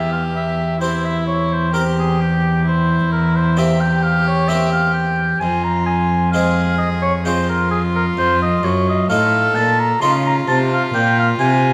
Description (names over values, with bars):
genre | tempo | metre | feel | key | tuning
classical, baroque-style sonata movement with continuo | 65 BPM | 3/4 | rubato | unclear | A4 = 440 Hz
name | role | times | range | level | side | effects
warm violin | melody | 0.0-11.7 s | E4 to A4 | -26 LUFS | equal | none
warm oboe | second line | 0.0-11.7 s | G4 to C6 | -21 LUFS | equal | none
harpsichord | accompaniment | 0.0-11.7 s | E2 to G4 | -27 LUFS | equal | none
rich cello | bass | 0.0-11.7 s | E2 to Db3 | -21 LUFS | equal | none
room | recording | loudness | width
wet recital hall reverb, RT60 1.6 s | none | -17 LUFS | mono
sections
0.0-11.7 A section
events
none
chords
0.0 C/E; 2.7 C7/E; 5.4 Fm; 8.2 F7; 10.9 Bb5